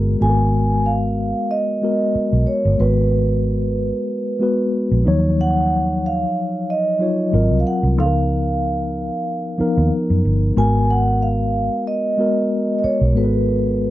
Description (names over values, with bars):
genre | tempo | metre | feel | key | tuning
lush 1970s-style soul | 93 BPM | 4/4 | swing 54% on 16ths | G# dorian | A4 = 440 Hz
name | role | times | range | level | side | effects
mellow tine electric piano | accompaniment | 0.0-13.9 s | E#3 to C#5 | -20 LUFS | left 2 dB | medium stereo tremolo
vintage muted fingered electric bass | bass | 0.0-13.9 s | G1 to F#2 | -18 LUFS | right 1 dB | none
vibraphone with soft mallets | melody | 0.2-13.9 s | B4 to G#5 | -22 LUFS | right 3 dB | none
room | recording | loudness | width
light reverb | dry, close 1970s-style studio recording | -16 LUFS | side -15 dB against mid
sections
0.2-13.9 A section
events
none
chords
0.2 G#m9; 5.1 D#m9; 7.3 G#13; 8.0 C#13; 10.6 G#m9